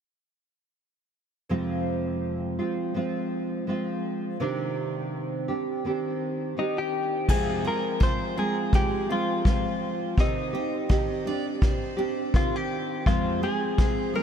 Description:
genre	acoustic pop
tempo	83 BPM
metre	4/4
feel	swing 55% on 16ths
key	unclear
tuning	A4 = 437 Hz
part	nylon-string guitar	accompaniment	1.5-14.2 s	F2 to Ab4	-28 LUFS	right 2 dB	analog chorus
part	direct-recorded clean electric guitar	melody	6.6-14.2 s	Eb4 to C5	-29 LUFS	left 3 dB	wide subtle chorus
part	vintage brush drum kit	drums	7.3-14.0 s	crash cymbal, kick drum	-24 LUFS	equal	none
part	picked steel-string acoustic guitar	arpeggios	7.6-14.2 s	Ab3 to Eb5	-37 LUFS	right 3 dB	ping-pong delay
room	moderate huge ambient reverb, RT60 5.6 s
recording	dreamy mix soaked in reverb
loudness	-24 LUFS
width	side -8 dB against mid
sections	1.5-7.3 A section; 7.3-14.2 B section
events	none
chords	1.5 Fm; 4.4 Cmadd9; 7.3 Fm; 10.2 Cmadd9; 13.1 Fm

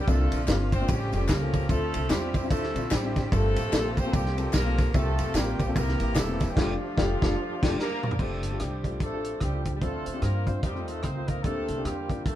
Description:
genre	uptempo gospel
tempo	148 BPM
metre	4/4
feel	swing 61% on 8ths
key	F major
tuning	A4 = 440 Hz
part	warm horn section	melody	0.0-12.4 s	F3 to C5	-32 LUFS	equal	none
part	percussive tonewheel organ	sustained chords	0.0-12.4 s	C#3 to F5	-37 LUFS	right 2 dB	slow rotary speaker, overdrive, chorus vibrato
part	clear upright piano	accompaniment	0.1-12.2 s	G2 to Bb4	-34 LUFS	left 4 dB	none
part	upright bass	bass	0.1-12.4 s	E1 to G2	-29 LUFS	equal	none
part	warm soul drum kit	drums	0.1-12.4 s	crash cymbal, hi-hat, kick drum, ride cymbal, rim click, snare drum, toms	-28 LUFS	equal	none
part	tambourine and handclaps	percussion	0.1-6.5 s	none	-41 LUFS	equal	none
room	moderate studio reverb, RT60 0.5 s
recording	band playing live in one room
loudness	-24 LUFS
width	side -12 dB against mid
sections	0.0-8.2 A section; 8.2-12.4 B section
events	band accent 6.6-8.2; tonewheel organ fill 7.6-8.2; drum fill 7.8-8.2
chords	0.1 C9sus4; 0.9 A7alt; 1.7 Dm9; 3.3 Gm11; 4.9 C7sus4; 5.8 C7; 6.6 F69; 9.8 Dm9; 10.6 F7; 11.4 Bb69

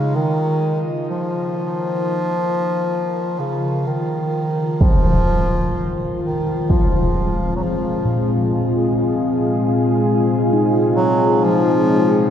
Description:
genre	dark ambient drone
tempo	free time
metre	none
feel	none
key	unclear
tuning	A4 = 440 Hz
part	warm bass clarinet	melody	0.0-12.3 s	Db3 to Gb3	-21 LUFS	equal	shimmer reverb, tape echo
part	deep dark ambient pad	sustained chords	0.0-12.3 s	Ab3 to Bb4	-20 LUFS	left 1 dB	chorus, built-in reverb, shimmer reverb
part	impact	percussion	4.8-6.9 s	none	-19 LUFS	equal	low-pass filter on sfx
part	bronze singing bowl	arpeggios	8.0-12.3 s	Bb2 to Eb4	-21 LUFS	left 2 dB	none
room	wet cathedral reverb, RT60 5.1 s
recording	in a vast, echoing space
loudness	-16 LUFS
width	side -9 dB against mid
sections	0.0-12.3 A section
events	fade-in on ambient pad 0.0-12.3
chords	0.0 N.C.; 4.8 Abadd9

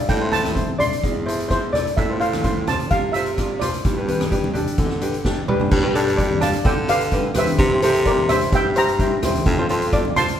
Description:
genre	calypso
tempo	128 BPM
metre	4/4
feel	straight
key	unclear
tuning	A4 = 440 Hz
part	steel pan	melody	0.0-10.4 s	A4 to C6	-23 LUFS	right 2 dB	none
part	tenor ukulele	accompaniment	0.0-10.4 s	D4 to D5	-24 LUFS	left 1 dB	none
part	growling baritone saxophone	bass	0.1-10.1 s	E2 to D3	-23 LUFS	equal	none
part	street-band drum kit	drums	0.1-10.4 s	crash cymbal, hi-hat, kick drum, rim click, snare drum, toms	-23 LUFS	equal	none
part	congas	percussion	0.3-10.3 s	none	-27 LUFS	equal	none
room	wet recital hall reverb, RT60 1.5 s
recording	recorded in a church or concert hall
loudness	-17 LUFS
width	side -10 dB against mid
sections	0.0-5.7 A section; 5.7-10.4 B section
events	drum fill 5.3-5.7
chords	0.1 Am; 2.0 F/A; 3.8 G; 7.6 C7; 9.5 F

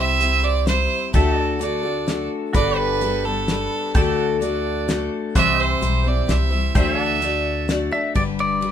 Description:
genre	honky-tonk and classic country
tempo	128 BPM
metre	3/4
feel	straight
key	unclear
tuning	A4 = 440 Hz
part	clear fiddle	second line	0.0-7.7 s	A4 to E5	-22 LUFS	right 7 dB	none
part	picked steel-string acoustic guitar	accompaniment	0.0-8.7 s	G2 to D5	-24 LUFS	left 5 dB	none
part	pedal steel guitar	sustained chords	0.0-8.2 s	F#4 to F#5	-29 LUFS	right 1 dB	none
part	upright bass	bass	0.0-8.7 s	G1 to D2	-24 LUFS	equal	none
part	damped 70s drum kit	drums	0.2-8.7 s	hi-hat, kick drum, ride cymbal, snare drum	-22 LUFS	equal	none
part	pedal steel guitar	melody	7.9-8.7 s	D5 to E5	-22 LUFS	left 1 dB	none
room	light reverb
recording	minimal, uncompressed stereo recording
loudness	-18 LUFS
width	side -9 dB against mid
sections	0.0-8.2 A section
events	fiddle solo 0.0-8.2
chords	0.0 C; 1.1 D; 2.5 Gadd9; 3.9 D; 5.3 C; 6.8 Dadd9; 8.2 G

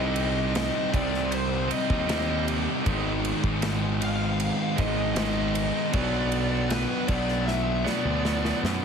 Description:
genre	quiet-loud alternative rock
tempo	78 BPM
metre	4/4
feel	straight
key	unclear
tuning	A4 = 440 Hz
part	smooth overdriven lead guitar	melody	0.0-8.6 s	B4 to F5	-31 LUFS	left 1 dB	none
part	crunchy overdriven guitar	riff	0.0-8.8 s	G#2 to C4	-30 LUFS	right 15 dB	none
part	thick fuzz guitar	riff	0.0-8.8 s	G#2 to Eb4	-30 LUFS	left 16 dB	distortion
part	fuzz picked electric bass	bass	0.0-8.8 s	G#1 to F#2	-29 LUFS	right 1 dB	overdrive
part	big rock drum kit	drums	0.2-8.8 s	kick drum, ride cymbal, snare drum	-31 LUFS	right 1 dB	none
room	little or no reverb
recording	heavily compressed radio sound, multiband compression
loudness	-23 LUFS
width	side -6 dB against mid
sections	0.0-8.8 A section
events	drum fill 7.5-8.8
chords	0.0 Cm; 2.9 G#m; 5.9 Bm

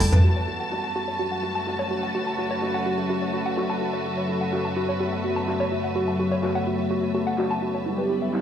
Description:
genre	melodic techno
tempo	126 BPM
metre	4/4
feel	straight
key	F# minor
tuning	A4 = 444 Hz
part	mellow synth brass	melody	0.0-0.1, 7.9-8.4 s	G4 to A4	-29 LUFS	right 4 dB	chorus, dub echo
part	evolving wavetable pad	sustained chords	0.0-8.4 s	F#2 to C#5	-28 LUFS	left 2 dB	chorus, built-in reverb
part	warbly dusty pluck	arpeggios	0.0-8.4 s	E4 to A5	-28 LUFS	equal	chorus, digital delay
part	deep house drum kit	drums	0.0-8.4 s	handclaps, hi-hat, toms	-26 LUFS	right 1 dB	low-pass filter on hats, low-pass filter on toms, low-pass filter on snare
part	dark studio string section	texture	0.0-8.4 s	F#4 to A5	-30 LUFS	right 1 dB	none
part	analog drone	drone	0.7-8.4 s	F#2 to C#3	-36 LUFS	equal	chorus
room	wet lush hall reverb, RT60 2.8 s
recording	played on a big sound system in a bare room, large studio reverb, small room ambience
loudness	-23 LUFS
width	side -9 dB against mid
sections	0.2-8.4 A section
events	filter sweep on synth arpeggio sound 0.2-8.4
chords	0.2 F#m; 7.9 Em/F#

